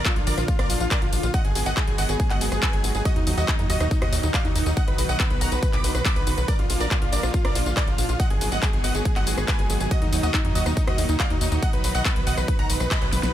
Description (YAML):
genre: uplifting trance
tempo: 140 BPM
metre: 4/4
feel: straight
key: Eb harmonic minor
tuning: A4 = 443 Hz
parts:
  - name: big supersaw lead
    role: melody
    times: 0.0-13.3 s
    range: Eb4 to D6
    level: -29 LUFS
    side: right 1 dB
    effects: sidechain pumping, ping-pong delay
  - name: bright grand piano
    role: second line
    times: 0.0-13.3 s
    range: Eb4 to D6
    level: -33 LUFS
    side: right 1 dB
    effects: sidechain pumping, ping-pong delay
  - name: lush unison pad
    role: sustained chords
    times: 0.0-13.3 s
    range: Bb2 to Gb4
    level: -30 LUFS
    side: equal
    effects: chorus, sidechain pumping
  - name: tight sequencer bass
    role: bass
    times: 0.0-13.3 s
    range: Ab1 to F2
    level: -26 LUFS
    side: equal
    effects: sidechain pumping
  - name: big-room dance drum kit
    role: drums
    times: 0.1-13.3 s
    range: handclaps, hi-hat, rim click, snare drum, tambourine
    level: -28 LUFS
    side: left 1 dB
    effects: overdrive
  - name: electronic kick drum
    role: drums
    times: 0.1-13.0 s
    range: none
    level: -24 LUFS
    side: equal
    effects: none
room: little or no reverb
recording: none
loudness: -20 LUFS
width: side -12 dB against mid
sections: 0.0-13.3 A section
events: drop 0.0-13.3; band accent 12.9; drum fill 13.1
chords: 0.0 Bb; 1.3 Abm7; 3.1 Ebm; 4.8 B; 6.5 Bb; 8.2 Abm7; 9.9 Ebm; 11.6 B